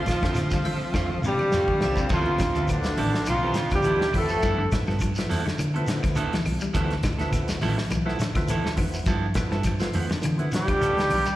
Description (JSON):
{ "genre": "afrobeat", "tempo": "103 BPM", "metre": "4/4", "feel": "swing 54% on 16ths", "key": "D dorian", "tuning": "A4 = 441 Hz", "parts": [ { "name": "warm horn section", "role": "melody", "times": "0.0-4.7, 10.6-11.4 s", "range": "D3 to A4", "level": "-25 LUFS", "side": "equal", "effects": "slapback echo" }, { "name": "clear trombone", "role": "second line", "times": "0.0-4.7, 10.5-11.4 s", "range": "D3 to A3", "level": "-35 LUFS", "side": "right 2 dB", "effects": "none" }, { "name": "raspy baritone saxophone", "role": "second line", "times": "0.0-4.7, 10.5-11.4 s", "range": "D2 to F3", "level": "-34 LUFS", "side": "equal", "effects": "slapback echo" }, { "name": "percussive tonewheel organ", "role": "accompaniment", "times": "0.0-10.9 s", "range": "F3 to A5", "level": "-35 LUFS", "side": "equal", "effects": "chorus vibrato, slow rotary speaker, slapback echo" }, { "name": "clean electric guitar", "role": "arpeggios", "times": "0.0-11.4 s", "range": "C3 to G3", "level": "-33 LUFS", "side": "left 3 dB", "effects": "slapback echo" }, { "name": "clean electric guitar", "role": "stabs", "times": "0.1-11.3 s", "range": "F3 to A4", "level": "-32 LUFS", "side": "right 4 dB", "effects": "slapback echo, tape echo" }, { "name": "warm soul drum kit", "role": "drums", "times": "0.1-11.4 s", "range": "crash cymbal, hi-hat, kick drum, snare drum, toms", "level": "-29 LUFS", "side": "equal", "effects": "none" }, { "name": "claves", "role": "percussion", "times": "0.1-11.3 s", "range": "none", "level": "-41 LUFS", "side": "left 1 dB", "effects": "none" }, { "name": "congas", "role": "percussion", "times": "0.1-11.3 s", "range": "none", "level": "-34 LUFS", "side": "right 1 dB", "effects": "none" }, { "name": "shekere", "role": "percussion", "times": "0.1-11.4 s", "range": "none", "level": "-34 LUFS", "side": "equal", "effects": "none" }, { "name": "hollow-body short-scale fingered electric bass", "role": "bass", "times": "0.2-11.2 s", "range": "A1 to D3", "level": "-28 LUFS", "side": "equal", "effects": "none" } ], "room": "light reverb, small room ambience", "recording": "live gig heard through the venue's PA, recital hall reverb", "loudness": "-22 LUFS", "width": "side -15 dB against mid", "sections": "0.0-2.1 A section; 2.1-11.4 B section", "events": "drum fill 0.9-2.1; tonewheel organ fill 0.9-2.1", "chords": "0.0 Dm7; 2.1 Dm69" }